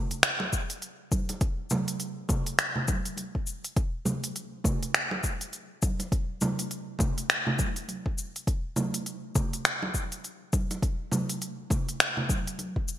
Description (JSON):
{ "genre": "downtempo", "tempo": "102 BPM", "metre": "4/4", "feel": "swing 59% on 16ths", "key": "none", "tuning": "none", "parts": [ { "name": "organic electronic drum kit", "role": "drums", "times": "0.1-13.0 s", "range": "cabasa, finger snaps, hi-hat", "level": "-28 LUFS", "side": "left 1 dB", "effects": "small room ambience, gated reverb" }, { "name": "congas", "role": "percussion", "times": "0.4-12.7 s", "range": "none", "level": "-33 LUFS", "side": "right 2 dB", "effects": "none" }, { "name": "electronic kick drum", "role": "drums", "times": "0.5-12.9 s", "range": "none", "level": "-28 LUFS", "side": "equal", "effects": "overdrive, small room ambience" } ], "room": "moderate lush hall reverb, RT60 1.9 s, digital ambience", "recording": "bright 1980s-style digital production", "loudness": "-27 LUFS", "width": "side -12 dB against mid", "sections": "0.0-13.0 A section", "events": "none", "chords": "none", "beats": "0.24 0.83 | 1.42 2.00 2.59 3.18 | 3.77 4.36 4.95 5.53 | 6.12 6.71 7.30 7.89 | 8.47 9.06 9.65 10.24 | 10.83 11.41 12.00 12.59" }